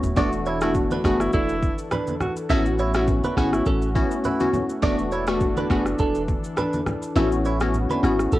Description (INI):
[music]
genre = afrobeats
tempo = 103 BPM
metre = 4/4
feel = swing 55% on 16ths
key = unclear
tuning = A4 = 440 Hz
[part]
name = warm analog pad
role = sustained chords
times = 0.0-8.4 s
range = E3 to A4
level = -30 LUFS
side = left 1 dB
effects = chorus, sidechain pumping, cassette tape
[part]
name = punchy sub bass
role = bass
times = 0.0-8.4 s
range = D1 to A1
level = -26 LUFS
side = equal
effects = none
[part]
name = afro-pop drum kit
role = drums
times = 0.0-8.4 s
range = kick drum, rim click, shaker, toms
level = -27 LUFS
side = equal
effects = cassette tape
[part]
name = glassy wavetable pluck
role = accompaniment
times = 0.2-8.2 s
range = A3 to F#4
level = -23 LUFS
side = left 2 dB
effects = chorus, cassette tape
[part]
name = direct-recorded clean electric guitar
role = riff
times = 0.2-8.4 s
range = B3 to E5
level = -28 LUFS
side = right 4 dB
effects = lush chorus, cassette tape
[part]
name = congas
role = percussion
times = 0.2-8.0 s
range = none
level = -32 LUFS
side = right 1 dB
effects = none
[part]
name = warm alto saxophone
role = melody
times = 0.6-3.6 s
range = E4 to F#4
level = -29 LUFS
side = right 1 dB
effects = cassette tape
[sound]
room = little or no reverb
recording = home recording on cassette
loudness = -20 LUFS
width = side -16 dB against mid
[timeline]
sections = 0.2-8.4 A section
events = drum fill 0.0; kick muted 7.2-8.4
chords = 0.2 E7sus4; 2.5 A69; 4.8 E7sus4; 7.2 A69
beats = | 0.17 0.75 1.33 1.91 | 2.50 3.08 3.66 4.24 | 4.83 5.41 5.99 6.58 | 7.16 7.74 8.32